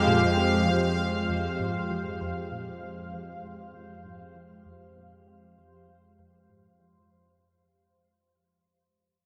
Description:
ambient, sequencer-driven space music; 98 BPM; 4/4; straight; F minor; A4 = 440 Hz
sweeping resonant pad; sustained chords; 0.0-7.1 s; F2 to F5; -28 LUFS; equal; chorus, shimmer reverb
bubbling stepped-filter texture; texture; 0.0-7.1 s; C5; -41 LUFS; equal; chorus, built-in reverb, shimmer reverb
plucky analog bass; riff; 0.1-7.0 s; F2 to C4; -36 LUFS; equal; ensemble chorus, delay
wet huge ambient reverb, RT60 7.6 s; dreamy mix soaked in reverb; -27 LUFS; mono
0.0-7.1 A section
fade-out on analog synth bass 0.0-7.1; fade-out 0.0-7.1
0.0 Fmadd9

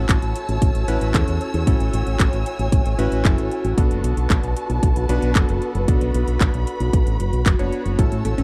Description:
italo disco; 114 BPM; 4/4; straight; A4 = 435 Hz
warm symphonic string section; sustained chords; 0.0-8.4 s; F#4 to E6; -30 LUFS; equal
bright electric grand piano; stabs; 0.0-8.4 s; B3 to C#5; -30 LUFS; equal; tape echo
fingered electric bass with an envelope filter; bass; 0.0-8.4 s; F#1 to A2; -24 LUFS; equal
electronic kick drum; drums; 0.1-8.1 s; -21 LUFS; equal
house drum kit; drums; 0.1-8.4 s; handclaps, hi-hat; -29 LUFS; equal
unison pluck; arpeggios; 8.0-8.4 s; F#3 to C#4; -28 LUFS; equal; cassette tape
little or no reverb; dry, close 1970s-style studio recording; -20 LUFS; mono
0.0-8.4 A section
0.0 A6; 3.8 Bm7

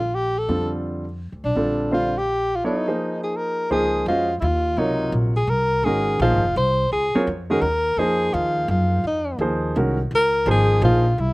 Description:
modal jazz; 169 BPM; 3/4; swing 65% on 8ths; Bb major, Db major from 3.7 s; A4 = 440 Hz
breathy alto saxophone; melody; 0.0-11.3 s; D4 to C5; -21 LUFS; equal
upright bass; bass; 0.0-11.3 s; F1 to Gb2; -24 LUFS; equal
warm baby grand piano; accompaniment; 0.5-11.0 s; C3 to Eb5; -23 LUFS; right 1 dB; slapback echo
little or no reverb; recorded outdoors, with no room sound; -18 LUFS; side -22 dB against mid
0.0-3.7 A section; 3.7-11.3 B section
break 2.6-3.7
0.0 Bbmaj9; 2.6 Ab9; 3.7 Dbmaj9

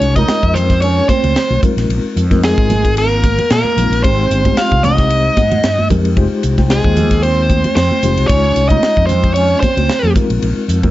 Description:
electric jazz fusion; 113 BPM; 4/4; swing 54% on 16ths; A4 = 444 Hz
biting lead guitar; melody; 0.0-10.1 s; Ab4 to F5; -16 LUFS; equal; overdrive, slapback echo
clear trombone; second line; 0.0-10.1 s; Ab3 to F4; -21 LUFS; right 3 dB
reed electric piano; accompaniment; 0.0-10.9 s; Ab3 to G5; -20 LUFS; left 4 dB; fast tremolo
fretless electric bass; bass; 0.0-10.9 s; F1 to Bb2; -16 LUFS; equal
tight funk drum kit; drums; 0.0-10.9 s; hi-hat, kick drum, ride cymbal, snare drum; -18 LUFS; equal
congas; percussion; 0.2-10.9 s; -22 LUFS; right 3 dB
light reverb; nothing above 7.8 kHz; -11 LUFS; side -15 dB against mid
0.0-10.9 A section
0.0 Dbmaj9; 1.6 Bb9sus4; 4.0 Abmaj7; 6.2 Fm9; 8.3 Dbmaj9; 10.2 Bb9sus4

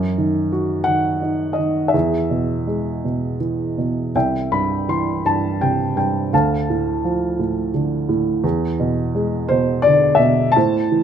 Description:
classical, lyrical solo piano; 56 BPM (dotted quarters); 6/8; rubato; A4 = 440 Hz
dark upright piano; solo; 0.0-11.0 s; C2 to C6; -17 LUFS; equal
moderate recital hall reverb, RT60 1.5 s; close, detailed microphones; -17 LUFS; side -8 dB against mid
0.0-11.0 A section
0.0 D#m/F#; 1.9 E; 4.2 C; 6.3 Dm; 8.4 E7

